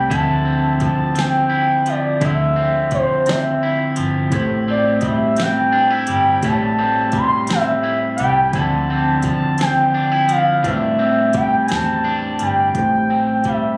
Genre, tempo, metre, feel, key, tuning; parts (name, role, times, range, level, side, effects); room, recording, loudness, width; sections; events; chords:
slow six-eight R&B; 57 BPM (dotted quarters); 6/8; straight; A minor; A4 = 440 Hz
gliding portamento lead; melody; 0.0-13.8 s; C5 to C6; -20 LUFS; equal; chorus, slapback echo
electric guitar at the edge of break-up; second line; 0.0-13.8 s; A2 to E4; -23 LUFS; equal
tine electric piano; accompaniment; 0.0-13.8 s; A2 to E5; -26 LUFS; equal; overdrive, analog chorus
vintage muted fingered electric bass; bass; 0.0-13.5 s; G1 to A2; -31 LUFS; equal
smooth R&B drum kit; drums; 0.1-13.6 s; hi-hat, kick drum, snare drum; -26 LUFS; equal
moderate studio reverb, RT60 0.5 s; recorded on a phone in the room, club reverb, compression; -17 LUFS; mono
0.0-12.7 A section; 12.7-13.8 B section
0.1 Dm9; 4.3 Am7; 8.5 Dm9; 10.6 Am11; 12.7 Am7